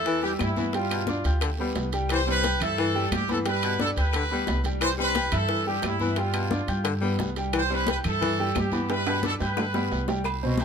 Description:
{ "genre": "latin, salsa", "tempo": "176 BPM", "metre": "4/4", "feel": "straight", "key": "C major", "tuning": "A4 = 440 Hz", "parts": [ { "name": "brilliant horn section", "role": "melody", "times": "0.0-10.0 s", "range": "E4 to C5", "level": "-28 LUFS", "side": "right 1 dB", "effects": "none" }, { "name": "clear grand piano", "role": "accompaniment", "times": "0.0-10.6 s", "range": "G3 to G6", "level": "-30 LUFS", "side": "right 2 dB", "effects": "none" }, { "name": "upright bass", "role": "bass", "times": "0.0-10.6 s", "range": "C2 to G2", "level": "-29 LUFS", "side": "equal", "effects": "none" }, { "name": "warm baritone saxophone", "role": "second line", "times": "0.1-10.0 s", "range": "B2 to G3", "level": "-31 LUFS", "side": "left 5 dB", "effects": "none" }, { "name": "bongos and cowbell", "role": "percussion", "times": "0.1-10.6 s", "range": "none", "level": "-35 LUFS", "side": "left 10 dB", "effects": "none" }, { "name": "congas", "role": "percussion", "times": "0.1-10.6 s", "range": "none", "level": "-35 LUFS", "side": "left 4 dB", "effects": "none" }, { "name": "guiro", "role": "percussion", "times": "0.1-10.6 s", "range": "none", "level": "-42 LUFS", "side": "right 6 dB", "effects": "none" }, { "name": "claves", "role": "percussion", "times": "0.4-10.4 s", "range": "none", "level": "-38 LUFS", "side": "left 9 dB", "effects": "none" }, { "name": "timbales and agogo bells", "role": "percussion", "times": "0.4-10.6 s", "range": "none", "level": "-33 LUFS", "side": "right 5 dB", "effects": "none" }, { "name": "dark cello", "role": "melody", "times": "10.4-10.6 s", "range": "B2 to C3", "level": "-24 LUFS", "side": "equal", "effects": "none" } ], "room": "light reverb", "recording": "minimal, uncompressed stereo recording", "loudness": "-23 LUFS", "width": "side -7 dB against mid", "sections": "0.0-10.3 A section", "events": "drum fill 8.9-10.3", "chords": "0.0 C (rootless); 0.7 G7; 2.1 C; 3.5 G; 4.8 C; 6.2 G7; 7.5 C; 8.9 G", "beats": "0.05 0.39 | 0.73 1.07 1.41 1.75 | 2.09 2.43 2.77 3.12 | 3.46 3.79 4.13 4.47 | 4.82 5.16 5.50 5.83 | 6.17 6.51 6.86 7.20 | 7.53 7.87 8.21 8.55 | 8.89 9.23 9.57 9.91 | 10.25 10.59" }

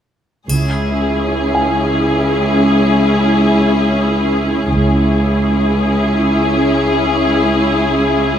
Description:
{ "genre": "cinematic, suspense film score", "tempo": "57 BPM", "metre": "4/4", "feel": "straight", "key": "C# minor", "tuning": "A4 = 440 Hz", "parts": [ { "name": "rich studio violin section", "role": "melody", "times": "0.5-8.4 s", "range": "G#4", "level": "-18 LUFS", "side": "left 3 dB", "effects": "none" }, { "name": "rich studio viola section", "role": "accompaniment", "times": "0.5-8.4 s", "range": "C#4 to E4", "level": "-17 LUFS", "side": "right 1 dB", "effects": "none" }, { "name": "rich studio double bass section", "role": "bass", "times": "0.5-5.7 s", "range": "C#2", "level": "-19 LUFS", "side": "right 2 dB", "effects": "none" }, { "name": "warm studio cello section", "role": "bass", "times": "0.5-8.4 s", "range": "C#2", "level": "-16 LUFS", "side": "equal", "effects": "none" }, { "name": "triangle", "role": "percussion", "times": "0.5-2.6 s", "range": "none", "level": "-28 LUFS", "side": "left 1 dB", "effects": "none" }, { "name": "clear grand piano", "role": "texture", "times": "1.5-8.4 s", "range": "G#5", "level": "-25 LUFS", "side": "right 2 dB", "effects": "none" } ], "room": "moderate scoring stage reverb, RT60 1.5 s", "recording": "none", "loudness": "-12 LUFS", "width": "side -9 dB against mid", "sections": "0.5-8.4 A section", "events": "none", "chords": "0.5 C#m", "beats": "| 0.49 1.55 2.60 3.65 | 4.71 5.76 6.81 7.86" }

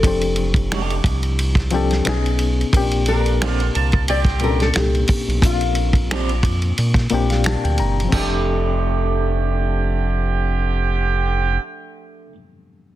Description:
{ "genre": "R&B, neo-soul", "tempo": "89 BPM", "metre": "4/4", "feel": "swing 54% on 16ths", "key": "F major", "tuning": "A4 = 444 Hz", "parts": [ { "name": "nylon-string guitar", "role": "melody", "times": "0.0-7.4 s", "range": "F4 to D5", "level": "-24 LUFS", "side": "left 2 dB", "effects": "slapback echo" }, { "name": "reed electric piano", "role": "accompaniment", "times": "0.0-13.0 s", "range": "Bb2 to Bb5", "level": "-24 LUFS", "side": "left 4 dB", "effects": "fast tremolo" }, { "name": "round analog bass", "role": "bass", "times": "0.0-11.6 s", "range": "F1 to Bb2", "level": "-20 LUFS", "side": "equal", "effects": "none" }, { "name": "warm soul drum kit", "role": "drums", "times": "0.0-8.3 s", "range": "finger snaps, hi-hat, kick drum, ride cymbal, snare drum, splash cymbal, toms", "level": "-21 LUFS", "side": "equal", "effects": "soft clipping on snare" }, { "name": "electric guitar through a small old amp", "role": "second line", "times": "0.7-12.3 s", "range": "A3 to G4", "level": "-28 LUFS", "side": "right 5 dB", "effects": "spring reverb" }, { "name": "warm horn section", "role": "stabs", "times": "3.1-11.6 s", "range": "G2 to A5", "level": "-25 LUFS", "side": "right 7 dB", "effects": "none" } ], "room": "little or no reverb", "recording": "dense, heavily limited modern master", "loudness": "-16 LUFS", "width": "side -14 dB against mid", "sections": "0.0-8.1 A section; 8.1-10.8 B section", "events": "reed electric piano fill 6.8-8.1", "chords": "0.0 F69; 2.1 B69; 2.7 Bb69; 8.1 F69", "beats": "| 0.04 0.71 1.38 2.06 | 2.73 3.41 4.08 4.75 | 5.43 6.10 6.78 7.45 | 8.12 8.80 9.47 10.15" }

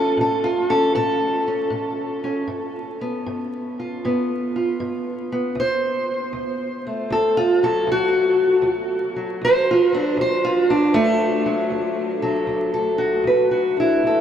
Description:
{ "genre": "blues", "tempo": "78 BPM", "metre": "4/4", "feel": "swing 67% on 8ths", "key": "unclear", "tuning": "A4 = 440 Hz", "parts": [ { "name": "fingerpicked steel-string acoustic guitar", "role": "solo", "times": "0.0-14.2 s", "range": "D2 to C5", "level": "-18 LUFS", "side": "equal", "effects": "diffuse ambient delay" } ], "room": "wet huge ambient reverb, RT60 9.3 s", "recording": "dreamy mix soaked in reverb, vinyl crackle", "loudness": "-18 LUFS", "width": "side -9 dB against mid", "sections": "0.0-11.7 A section; 11.7-14.2 B section", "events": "steel-string acoustic guitar solo 0.0-11.7", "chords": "0.0 A; 2.5 G7; 5.6 D", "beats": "0.18 0.95 1.72 | 2.49 3.26 4.03 4.80 | 5.57 6.34 7.11 7.88 | 8.65 9.42 10.19 10.96 | 11.73 12.50 13.27 14.04" }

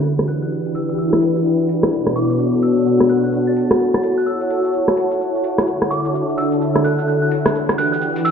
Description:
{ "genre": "UK garage, two-step garage", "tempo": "128 BPM", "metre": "4/4", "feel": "swing 61% on 16ths", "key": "unclear", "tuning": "A4 = 440 Hz", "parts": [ { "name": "soft string machine", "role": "sustained chords", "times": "0.0-8.3 s", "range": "B2 to C#5", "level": "-20 LUFS", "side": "equal", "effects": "ensemble chorus, vintage 12-bit sampler grit" }, { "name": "shekere", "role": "percussion", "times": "0.0-8.2 s", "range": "none", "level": "-49 LUFS", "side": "right 2 dB", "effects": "none" }, { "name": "airy breathy pad", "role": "texture", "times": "0.0-8.3 s", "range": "D3 to A5", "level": "-18 LUFS", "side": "left 1 dB", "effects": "chorus" }, { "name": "garage drum kit", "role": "drums", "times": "0.2-8.3 s", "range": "hi-hat, rim click", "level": "-20 LUFS", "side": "equal", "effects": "none" }, { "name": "soft synth bell", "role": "melody", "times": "0.3-8.3 s", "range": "D6 to A6", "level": "-26 LUFS", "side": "right 1 dB", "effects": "chorus, digital delay" } ], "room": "wet digital room reverb, RT60 1.2 s, digital ambience", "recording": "played on a big sound system in a bare room, stone room reverb, low-pass filter", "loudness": "-15 LUFS", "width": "side -7 dB against mid", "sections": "0.0-8.3 A section", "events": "filter sweep on string machine 0.0-8.3; filter sweep 0.0-8.3", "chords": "0.0 Em9; 1.9 Bm9; 3.6 F#m7; 5.7 Dmaj7; 7.5 Em9", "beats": "| 0.05 0.52 0.99 1.46 | 1.92 2.39 2.86 3.33 | 3.80 4.27 4.74 5.21 | 5.67 6.14 6.61 7.08 | 7.55 8.02" }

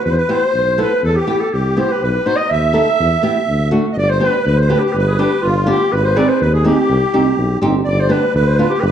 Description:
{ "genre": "klezmer", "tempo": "123 BPM", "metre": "2/4", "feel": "straight", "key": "E harmonic minor, G phrygian dominant from 4.0 s", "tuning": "A4 = 441 Hz", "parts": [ { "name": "clear clarinet", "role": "melody", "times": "0.0-8.9 s", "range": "F4 to E5", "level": "-17 LUFS", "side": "left 1 dB", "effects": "none" }, { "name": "musette accordion", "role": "second line", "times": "0.0-8.9 s", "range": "F4 to E5", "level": "-21 LUFS", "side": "right 4 dB", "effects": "none" }, { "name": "breathy tuba", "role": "bass", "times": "0.1-8.9 s", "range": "G1 to E2", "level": "-18 LUFS", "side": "equal", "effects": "none" }, { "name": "flamenco guitar", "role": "accompaniment", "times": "0.3-8.7 s", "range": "A3 to A4", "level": "-19 LUFS", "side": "right 1 dB", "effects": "none" } ], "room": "wet recital hall reverb, RT60 1.4 s", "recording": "dark, warm production", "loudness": "-13 LUFS", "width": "side -9 dB against mid", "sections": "0.0-4.0 A section; 4.0-8.9 B section", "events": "none", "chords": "0.1 Em; 2.0 B; 3.0 Em; 3.5 D; 4.0 G; 5.9 Ab; 6.9 Cm; 7.9 G", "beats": "| 0.05 0.54 | 1.03 1.52 | 2.02 2.50 | 3.00 3.48 | 3.97 4.46 | 4.95 5.44 | 5.92 6.41 | 6.90 7.38 | 7.87 8.35 | 8.84" }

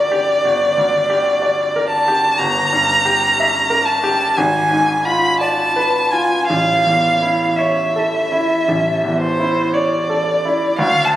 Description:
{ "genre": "classical, romantic duo for violin and grand piano", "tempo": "54-62 BPM", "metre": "4/4", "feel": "rubato", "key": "unclear", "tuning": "A4 = 440 Hz", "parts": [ { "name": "rich violin", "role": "melody", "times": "0.0-11.2 s", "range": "C5 to B5", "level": "-15 LUFS", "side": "equal", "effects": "none" }, { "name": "bright grand piano", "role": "accompaniment", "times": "0.0-11.2 s", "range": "G1 to E5", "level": "-19 LUFS", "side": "equal", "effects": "none" } ], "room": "moderate concert hall reverb, RT60 2.4 s", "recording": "recorded on a phone in the room, club reverb", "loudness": "-14 LUFS", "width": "side -13 dB against mid", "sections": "0.0-10.8 A section", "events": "none", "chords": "0.0 Gm; 2.4 Edim/G; 4.4 G#dim7; 6.5 A", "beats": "0.43 1.41 | 2.39 3.38 4.37 5.41 | 6.48 7.57 8.67 9.74 | 10.80" }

